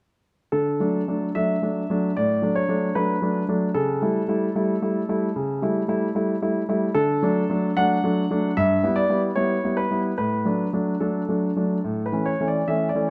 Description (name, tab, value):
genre	classical-period piano sonatina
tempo	74 BPM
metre	4/4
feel	straight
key	D major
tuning	A4 = 435 Hz
part	clear concert grand piano	solo	0.5-13.1 s	G2 to F#5	-23 LUFS	equal	none
room	moderate recital hall reverb, RT60 1.4 s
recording	close, detailed microphones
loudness	-23 LUFS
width	mono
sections	0.5-13.1 A section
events	none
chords	0.5 D; 3.8 A7/C#; 6.9 D; 8.6 Em/G; 10.2 D/A; 11.8 A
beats	| 0.52 1.35 2.16 2.96 | 3.75 4.55 5.35 6.15 | 6.95 7.77 8.57 9.37 | 10.19 11.02 11.85 12.68